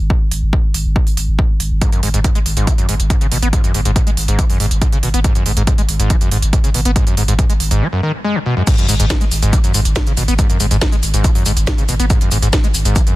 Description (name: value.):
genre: driving peak-time techno.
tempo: 140 BPM.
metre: 4/4.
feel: straight.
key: G# minor.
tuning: A4 = 440 Hz.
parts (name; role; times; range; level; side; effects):
saturated sub bass; bass; 0.0-13.0 s; G#1; -17 LUFS; equal; tube saturation, sidechain pumping, low-pass filter.
electronic kick drum; drums; 0.1-13.0 s; none; -15 LUFS; equal; none.
techno drum kit; drums; 0.3-13.2 s; crash cymbal, hi-hat, shaker, snare drum; -21 LUFS; right 1 dB; none.
overdriven acid bass; riff; 1.8-13.2 s; F#2 to B3; -19 LUFS; equal; distortion, analog chorus, sidechain pumping, tape echo.
room: digital ambience.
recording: dense, heavily limited modern master.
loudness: -12 LUFS.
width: side -18 dB against mid.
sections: 0.0-8.7 A section; 8.7-13.2 B section.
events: break 7.8-8.7; drop 8.7-13.2.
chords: none.